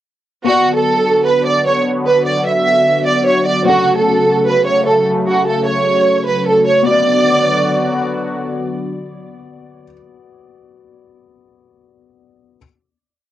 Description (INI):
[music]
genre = hip hop, trap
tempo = 150 BPM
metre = 4/4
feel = half-time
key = B minor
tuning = A4 = 443 Hz
[part]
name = dark concert grand piano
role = accompaniment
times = 0.4-12.6 s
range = F#3 to D5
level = -23 LUFS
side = left 8 dB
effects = cassette tape
[part]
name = warm studio violin section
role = melody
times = 0.5-8.0 s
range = F#4 to E5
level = -13 LUFS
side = right 2 dB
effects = cassette tape
[part]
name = sweeping resonant pad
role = sustained chords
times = 0.5-9.9 s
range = C#3 to F#4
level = -19 LUFS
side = left 2 dB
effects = chorus, cassette tape
[sound]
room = light reverb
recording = home recording on cassette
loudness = -12 LUFS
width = side -12 dB against mid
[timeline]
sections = 0.5-6.9 breakdown; 6.9-10.1 final chord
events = none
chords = 0.5 Bm; 3.7 F#m; 6.9 Bm